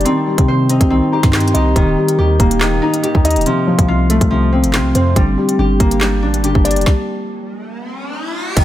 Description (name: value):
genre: hip hop, drill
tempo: 141 BPM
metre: 4/4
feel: half-time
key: G minor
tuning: A4 = 440 Hz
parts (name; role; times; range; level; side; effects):
- felt-muted upright piano; accompaniment; 0.0-6.9 s; C3 to Eb5; -17 LUFS; left 2 dB; none
- Celtic harp; arpeggios; 0.0-8.6 s; Eb3 to C5; -18 LUFS; equal; digital delay
- long sustained 808-style bass; bass; 0.0-8.6 s; D1 to C3; -17 LUFS; equal; none
- drill drum kit; drums; 0.0-8.6 s; crash cymbal, handclaps, hi-hat, kick drum, snare drum; -16 LUFS; equal; none
- riser; sound effects; 7.4-8.6 s; none; -25 LUFS; left 1 dB; none
- breathy large flute ensemble; sustained chords; 8.6 s; Eb4 to Bb5; -25 LUFS; left 1 dB; none
room: small room ambience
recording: none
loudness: -12 LUFS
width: side -13 dB against mid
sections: 0.0-8.6 A section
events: stop 6.9-8.6; riser 7.4-8.6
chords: 0.1 Cm; 1.8 Eb; 3.5 F; 5.2 Gm; 6.9 N.C.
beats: | 0.06 0.48 0.91 1.33 | 1.76 2.18 2.61 3.04 | 3.46 3.89 4.31 4.74 | 5.16 5.59 6.01 6.44 | 6.87 7.29 7.72 8.14 | 8.57